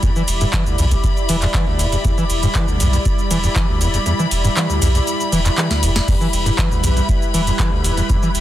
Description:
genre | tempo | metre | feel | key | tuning
acid house | 119 BPM | 4/4 | straight | E minor pentatonic | A4 = 442 Hz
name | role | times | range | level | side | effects
lush unison pad | sustained chords | 0.0-8.4 s | G3 to D5 | -24 LUFS | right 1 dB | chorus, phaser, sidechain pumping
overdriven acid bass | riff | 0.0-8.3 s | D2 to E3 | -20 LUFS | equal | distortion, tube saturation, lush chorus, sidechain pumping, tape echo
booming analog drum machine | drums | 0.0-8.4 s | crash cymbal, handclaps, hi-hat, ride cymbal, shaker, snare drum | -24 LUFS | right 1 dB | none
electronic kick drum | drums | 0.0-8.2 s | none | -19 LUFS | equal | none
clear chamber string section | texture | 0.0-8.4 s | B5 | -26 LUFS | left 4 dB | sidechain pumping
warm sub bass | bass | 0.3-8.4 s | E1 to B1 | -20 LUFS | equal | tube saturation, sidechain pumping
room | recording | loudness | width
little or no reverb | dense, heavily limited modern master | -15 LUFS | side -13 dB against mid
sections
0.0-8.4 A section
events
kick drops out 4.1-6.1; drum fill 5.7-6.1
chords
0.0 Em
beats
| 0.03 0.53 1.04 1.54 | 2.04 2.55 3.05 3.56 | 4.06 4.57 5.07 5.58 | 6.08 6.58 7.09 7.59 | 8.10

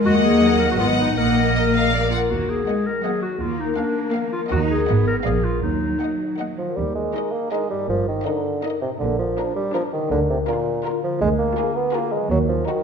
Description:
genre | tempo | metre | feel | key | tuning
cinematic, playful, whimsical film cue | 162 BPM | 3/4 | straight | Eb minor, Eb major from 6.8 s | A4 = 440 Hz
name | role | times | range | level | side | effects
concert harp | arpeggios | 0.0-12.8 s | G2 to Cb5 | -28 LUFS | left 5 dB | none
rich studio double bass section | bass | 0.0-12.6 s | G1 to Eb2 | -24 LUFS | right 4 dB | none
warm studio cello section | bass | 0.0-12.6 s | D2 to Eb4 | -27 LUFS | right 1 dB | none
rich studio violin section | melody | 0.1-12.8 s | Bb4 to Gb5 | -29 LUFS | left 3 dB | none
rich studio violin section | second line | 0.1-12.8 s | Gb4 to F5 | -30 LUFS | left 1 dB | none
warm clarinet | second line | 0.1-6.4 s | D4 to Bb4 | -24 LUFS | left 3 dB | none
rich studio viola section | accompaniment | 0.1-12.8 s | Bb3 to F4 | -26 LUFS | left 3 dB | none
warm bassoon | accompaniment | 6.6-12.8 s | Bb2 to Cb4 | -23 LUFS | right 2 dB | none
mellow French horn section | sustained chords | 7.1-12.8 s | D4 to Bb4 | -31 LUFS | left 6 dB | none
room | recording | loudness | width
moderate scoring stage reverb, RT60 1.6 s | dark, warm production | -19 LUFS | side -6 dB against mid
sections
0.0-6.8 A section; 6.8-12.8 B section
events
none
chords
0.1 Ebm; 0.8 Abm7; 1.2 Ebm/Bb; 1.9 Bb; 2.3 Ebm; 3.4 Bb/Eb; 4.5 Ebm; 4.9 Abm7; 5.2 Bb7b9; 5.6 Ebm; 6.8 Eb5; 7.9 Eb/G; 9.0 Bb; 10.1 Bb/D; 11.2 Bb7/D; 12.3 Ebm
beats
| 0.06 0.42 0.78 | 1.17 1.55 1.92 | 2.30 2.67 3.04 | 3.41 3.78 4.14 | 4.51 4.88 5.25 | 5.63 6.01 6.39 | 6.78 7.15 7.52 | 7.90 8.27 8.64 | 9.01 9.38 9.75 | 10.12 10.48 10.85 | 11.21 11.58 11.94 | 12.30 12.67

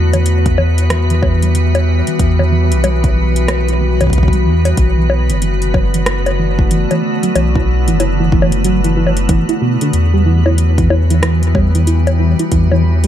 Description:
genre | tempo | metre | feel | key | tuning
IDM | 93 BPM | 4/4 | swing 62% on 16ths | E minor | A4 = 441 Hz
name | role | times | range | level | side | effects
icy glass pad | sustained chords | 0.0-13.1 s | D3 to B4 | -18 LUFS | equal | chorus, built-in reverb
deep acid bass | arpeggios | 0.0-13.1 s | B2 to E4 | -19 LUFS | right 2 dB | wide subtle chorus, digital delay
warm sub bass | bass | 0.0-13.1 s | F#1 to E2 | -13 LUFS | equal | none
electro analog drum machine | drums | 0.1-13.1 s | bongos, hi-hat, rim click | -21 LUFS | left 2 dB | overdrive, digital delay
electronic kick drum | drums | 0.5-12.7 s | none | -15 LUFS | equal | none
room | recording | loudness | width
light reverb, digital ambience | dark, warm production | -11 LUFS | side -10 dB against mid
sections
0.0-13.1 A section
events
filter sweep on acid bass 0.0-13.1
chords
0.0 Emadd9; 4.8 Bm7; 9.9 Emadd9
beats
0.26 0.90 1.55 | 2.19 2.84 3.48 4.13 | 4.78 5.42 6.07 6.71 | 7.36 8.00 8.65 9.29 | 9.94 10.58 11.23 11.87 | 12.52

